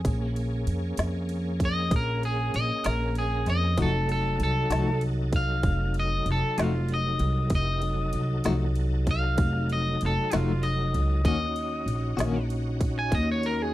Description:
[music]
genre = slow blues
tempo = 64 BPM (dotted quarters)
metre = 12/8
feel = straight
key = unclear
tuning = A4 = 440 Hz
[part]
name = electric guitar at the edge of break-up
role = melody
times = 0.0-13.7 s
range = F4 to Ab5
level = -30 LUFS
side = left 1 dB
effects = slapback echo
[part]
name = organic electronic drum kit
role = drums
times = 0.0-13.6 s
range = kick drum, ride cymbal, snare drum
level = -28 LUFS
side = equal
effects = overdrive
[part]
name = bright tonewheel organ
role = sustained chords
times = 0.1-13.7 s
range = Gb3 to Bb4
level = -34 LUFS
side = equal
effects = slow rotary speaker, chorus vibrato
[part]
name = upright bass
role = bass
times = 0.1-13.7 s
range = F1 to F2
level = -26 LUFS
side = equal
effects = none
[part]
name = clean electric guitar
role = accompaniment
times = 3.8-12.4 s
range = Eb3 to Gb4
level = -28 LUFS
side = left 4 dB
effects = tremolo
[sound]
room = little or no reverb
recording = dry, close 1970s-style studio recording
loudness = -24 LUFS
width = side -15 dB against mid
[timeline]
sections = 0.0-13.7 A section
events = clean electric guitar solo 0.0-13.7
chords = 0.0 Bbm7; 3.8 F7b9; 11.3 Ebm7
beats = | 0.05 0.98 1.92 2.85 | 3.78 4.71 5.65 6.58 | 7.51 8.45 9.38 10.32 | 11.25 12.19 13.12

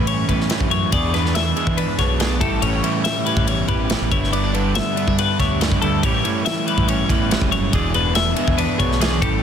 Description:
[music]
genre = math rock and midwest emo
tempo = 141 BPM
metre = 4/4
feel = straight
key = unclear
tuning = A4 = 440 Hz
[part]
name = twelve-string electric guitar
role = accompaniment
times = 0.0-9.4 s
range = E2 to G#4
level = -25 LUFS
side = right 6 dB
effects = wide subtle chorus
[part]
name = twelve-string electric guitar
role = arpeggios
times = 0.0-9.4 s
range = A4 to E5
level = -23 LUFS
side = left 10 dB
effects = spring reverb
[part]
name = overdriven semi-hollow guitar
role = riff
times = 0.0-9.4 s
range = G2 to G#4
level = -24 LUFS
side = right 2 dB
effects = none
[part]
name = growling fingered electric bass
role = bass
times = 0.0-9.4 s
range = E1 to E3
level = -23 LUFS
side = equal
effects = overdrive
[part]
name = modern studio drum kit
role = drums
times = 0.1-9.3 s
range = kick drum, ride cymbal, snare drum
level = -22 LUFS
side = equal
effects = none
[sound]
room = light reverb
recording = dense, heavily limited modern master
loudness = -16 LUFS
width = side -8 dB against mid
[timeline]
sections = 0.0-9.4 A section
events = none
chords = 0.0 A7; 0.9 E7; 2.4 A7; 4.1 G6; 6.0 A7; 7.7 E7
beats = 0.08 0.50 | 0.93 1.35 1.78 2.21 | 2.63 3.06 3.48 3.91 | 4.33 4.76 5.18 5.61 | 6.03 6.46 6.88 7.31 | 7.73 8.16 8.58 9.01

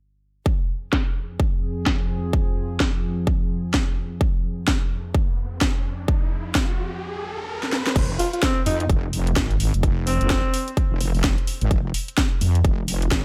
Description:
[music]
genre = bass house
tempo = 128 BPM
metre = 4/4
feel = swing 60% on 16ths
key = F minor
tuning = A4 = 440 Hz
[part]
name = sweeping resonant pad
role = sustained chords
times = 0.5-7.0 s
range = F2 to Ab4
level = -33 LUFS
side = equal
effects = chorus, vintage 12-bit sampler grit, sidechain pumping
[part]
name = electronic kick drum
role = drums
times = 0.5-13.2 s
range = none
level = -25 LUFS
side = equal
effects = overdrive, studio reverb
[part]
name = garage drum kit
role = drums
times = 0.9-13.2 s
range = crash cymbal, hi-hat, snare drum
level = -28 LUFS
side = equal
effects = overdrive, low-pass filter on snare, studio reverb, low-pass filter on hats, low-pass filter on cymbals
[part]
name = riser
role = sound effects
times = 5.3-8.0 s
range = none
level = -35 LUFS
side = equal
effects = none
[part]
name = wobble bass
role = bass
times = 8.0-13.2 s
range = F1 to F2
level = -24 LUFS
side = equal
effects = chorus, overdrive, sidechain pumping
[part]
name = growling alto saxophone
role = melody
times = 8.2-10.7 s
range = C4 to F4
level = -29 LUFS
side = equal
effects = dub echo
[sound]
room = digital ambience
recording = faint mains hum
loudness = -23 LUFS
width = mono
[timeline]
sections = 0.5-8.0 A section; 8.0-13.2 B section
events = filter sweep on analog synth pad 0.5-8.0; riser 5.3-8.0; drum fill 7.6-8.0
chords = 0.5 Fm; 8.0 N.C.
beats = | 0.46 0.93 1.40 1.86 | 2.33 2.80 3.27 3.74 | 4.21 4.68 5.15 5.62 | 6.08 6.55 7.02 7.49 | 7.96 8.43 8.90 9.37 | 9.83 10.30 10.77 11.24 | 11.71 12.18 12.65 13.12

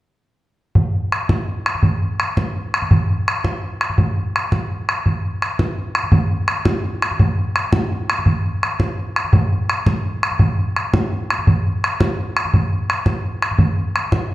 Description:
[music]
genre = celtic folk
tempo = 112 BPM (dotted quarters)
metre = 6/8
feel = straight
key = none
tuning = none
[part]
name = bodhran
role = percussion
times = 0.8-14.2 s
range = none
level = -16 LUFS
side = equal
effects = none
[sound]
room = wet recital hall reverb, RT60 1.3 s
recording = none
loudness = -16 LUFS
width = side -16 dB against mid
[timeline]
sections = 0.8-9.3 A section; 9.3-14.3 A section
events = none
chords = none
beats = | 0.76 1.29 | 1.83 2.37 | 2.90 3.44 | 3.98 4.51 | 5.05 5.58 | 6.12 6.65 | 7.19 7.72 | 8.26 8.79 | 9.32 9.86 | 10.39 10.92 | 11.46 11.99 | 12.52 13.05 | 13.59 14.12

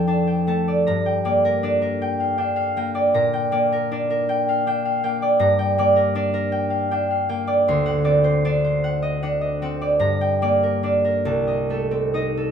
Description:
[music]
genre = classical, solo harp piece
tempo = 52 BPM (dotted quarters)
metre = 6/8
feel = uneven beats, rubato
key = G minor from 5.4 s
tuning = A4 = 440 Hz
[part]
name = concert harp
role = solo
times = 0.0-12.5 s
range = C2 to C6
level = -18 LUFS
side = equal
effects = none
[sound]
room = moderate stone room reverb, RT60 1.0 s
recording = none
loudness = -18 LUFS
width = side -7 dB against mid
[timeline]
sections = 0.0-12.5 A section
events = none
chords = 0.0 Dm/F; 0.9 Gm; 3.2 Gm/Bb; 5.4 Gm; 7.7 D7; 10.0 Gm; 11.3 Adim/C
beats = | 0.87 2.02 | 3.16 4.31 | 5.42 6.54 | 7.68 8.83 | 10.02 11.26

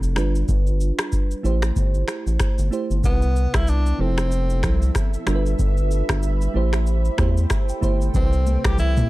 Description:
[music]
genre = afrobeats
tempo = 94 BPM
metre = 4/4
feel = swing 58% on 16ths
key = C major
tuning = A4 = 440 Hz
[part]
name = bell-like FM electric piano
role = accompaniment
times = 0.0-9.1 s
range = C3 to B5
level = -28 LUFS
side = right 4 dB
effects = chorus
[part]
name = round analog bass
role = bass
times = 0.0-9.0 s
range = F1 to E2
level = -20 LUFS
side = equal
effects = none
[part]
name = booming analog drum machine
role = drums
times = 0.0-9.1 s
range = finger snaps, kick drum, rim click, shaker, toms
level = -22 LUFS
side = equal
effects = none
[part]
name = granular cloud pad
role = sustained chords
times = 3.7-9.1 s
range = G4 to E6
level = -33 LUFS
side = right 1 dB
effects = built-in reverb
[part]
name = breathy tenor saxophone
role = melody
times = 3.1-9.1 s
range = B3 to G4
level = -28 LUFS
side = left 1 dB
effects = ping-pong delay
[part]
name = congas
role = percussion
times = 8.2-9.1 s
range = none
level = -30 LUFS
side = left 3 dB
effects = none
[sound]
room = little or no reverb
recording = dark, warm production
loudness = -18 LUFS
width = side -18 dB against mid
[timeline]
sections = 0.0-3.0 A section; 3.0-9.1 B section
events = FM electric piano fill 6.9-8.1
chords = 0.2 G7; 1.4 Am7; 3.0 Cmaj7; 4.0 Fmaj7; 5.3 G7; 6.6 Am7; 8.1 Cmaj7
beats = | 0.49 1.12 1.76 2.40 | 3.04 3.68 4.32 4.96 | 5.59 6.23 6.87 7.51 | 8.15 8.79

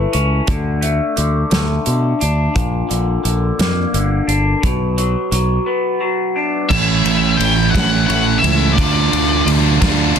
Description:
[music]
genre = quiet-loud alternative rock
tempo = 58 BPM (dotted quarters)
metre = 6/8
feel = straight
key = A mixolydian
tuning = A4 = 444 Hz
[part]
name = electric guitar through a small old amp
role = arpeggios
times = 0.0-6.7 s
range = A2 to D4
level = -19 LUFS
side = left 2 dB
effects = phaser
[part]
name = overdriven fingered electric bass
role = bass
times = 0.0-10.2 s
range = G1 to B2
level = -18 LUFS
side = equal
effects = none
[part]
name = loose indie drum kit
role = drums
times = 0.1-10.2 s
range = crash cymbal, hi-hat, kick drum, ride cymbal, snare drum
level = -20 LUFS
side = equal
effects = none
[part]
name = octave-fuzz lead guitar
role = melody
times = 6.7-9.5 s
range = D5 to G5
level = -19 LUFS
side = left 2 dB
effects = distortion, digital delay
[part]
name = high-gain distorted guitar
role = riff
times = 6.7-10.2 s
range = A2 to F4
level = -20 LUFS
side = left 14 dB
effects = distortion
[part]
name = thick fuzz guitar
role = riff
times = 6.7-10.2 s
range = A2 to F4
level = -17 LUFS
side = right 12 dB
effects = distortion
[sound]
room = small room ambience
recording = dense, heavily limited modern master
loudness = -14 LUFS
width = side -7 dB against mid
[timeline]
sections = 0.0-6.7 A section; 6.7-10.2 B section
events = none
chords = 0.5 D5; 2.6 Bb; 4.6 Bm; 6.7 A; 8.8 Dm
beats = | 0.48 1.52 | 2.56 3.59 | 4.63 5.67 | 6.70 7.74 | 8.77 9.81

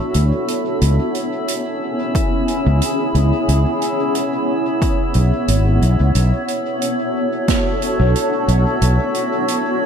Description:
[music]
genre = ambient dub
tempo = 90 BPM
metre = 4/4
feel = swing 54% on 16ths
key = unclear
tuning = A4 = 440 Hz
[part]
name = granular cloud pad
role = sustained chords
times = 0.0-9.9 s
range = B3 to C#5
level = -19 LUFS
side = equal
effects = built-in reverb
[part]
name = drifting glass-harmonics texture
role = texture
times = 0.0-9.9 s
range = E4 to E5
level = -26 LUFS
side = left 2 dB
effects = chorus, built-in reverb
[part]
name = fingered electric bass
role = bass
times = 0.1-9.0 s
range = G#1 to D2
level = -14 LUFS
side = equal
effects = none
[part]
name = soft-mallet drum kit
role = drums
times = 0.1-9.6 s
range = hi-hat, snare drum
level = -25 LUFS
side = right 6 dB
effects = none
[part]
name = electronic kick drum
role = drums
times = 2.1-7.6 s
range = none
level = -20 LUFS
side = equal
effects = overdrive
[sound]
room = moderate echo chamber reverb, RT60 2.3 s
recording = none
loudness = -15 LUFS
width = side -7 dB against mid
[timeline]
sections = 0.0-9.9 A section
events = none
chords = 0.0 Bm9; 0.8 C#m7; 6.1 Bm9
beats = 0.15 | 0.82 1.48 2.15 2.82 | 3.48 4.15 4.82 5.48 | 6.15 6.82 7.48 8.15 | 8.82 9.48

